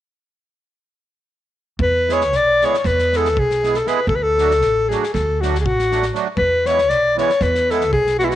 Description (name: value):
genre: balkan folk, Balkan wedding band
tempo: 236 BPM (eighths)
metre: 9/8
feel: straight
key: E mixolydian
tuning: A4 = 442 Hz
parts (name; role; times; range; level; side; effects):
- clear alto saxophone; melody; 1.8-8.4 s; E4 to D5; -16 LUFS; left 2 dB; none
- upright bass; bass; 1.8-8.3 s; A1 to E2; -23 LUFS; right 2 dB; none
- loose indie drum kit; percussion; 1.8-8.4 s; kick drum, snare drum; -30 LUFS; left 2 dB; none
- accordion; accompaniment; 2.1-8.3 s; E3 to G#4; -25 LUFS; right 12 dB; light tremolo tuning
room: light reverb, small room reverb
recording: 1960s-style stereo, nothing above 10.7 kHz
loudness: -15 LUFS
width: side -12 dB against mid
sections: 1.8-8.4 A section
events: none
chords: 1.8 E; 4.1 D; 6.4 E